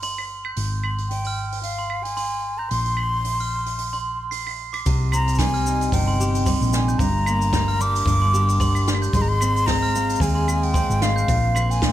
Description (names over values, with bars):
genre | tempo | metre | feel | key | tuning
folktronica | 112 BPM | 4/4 | swing 56% on 16ths | C minor | A4 = 436 Hz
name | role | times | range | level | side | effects
glockenspiel with hard plastic mallets | second line | 0.0-11.7 s | C6 to C7 | -30 LUFS | right 4 dB | digital delay
hollow-body short-scale fingered electric bass | bass | 0.0-11.9 s | G1 to Eb2 | -23 LUFS | equal | none
jazz brush drum kit | drums | 0.0-11.9 s | cabasa, claves, hi-hat, snare drum | -30 LUFS | right 2 dB | none
breathy mellow silver concert flute | melody | 1.1-11.9 s | F5 to D6 | -25 LUFS | left 1 dB | digital delay
picked steel-string acoustic guitar | arpeggios | 4.9-11.9 s | G2 to Ab4 | -25 LUFS | right 1 dB | none
kick drum | drums | 4.9-11.9 s | none | -25 LUFS | equal | none
room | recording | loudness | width
light reverb, small room ambience | none | -19 LUFS | side -12 dB against mid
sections
0.0-4.9 A section; 4.9-11.9 B section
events
none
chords
0.0 N.C.; 0.6 Fm/Ab; 2.7 Bbsus2; 4.9 Cm; 7.0 Gm; 9.1 Fm/Ab; 11.3 Bbsus2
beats
0.03 | 0.57 1.10 1.64 2.18 | 2.71 3.25 3.78 4.32 | 4.86 5.39 5.93 6.46 | 7.00 7.53 8.07 8.61 | 9.14 9.68 10.21 10.75 | 11.28 11.82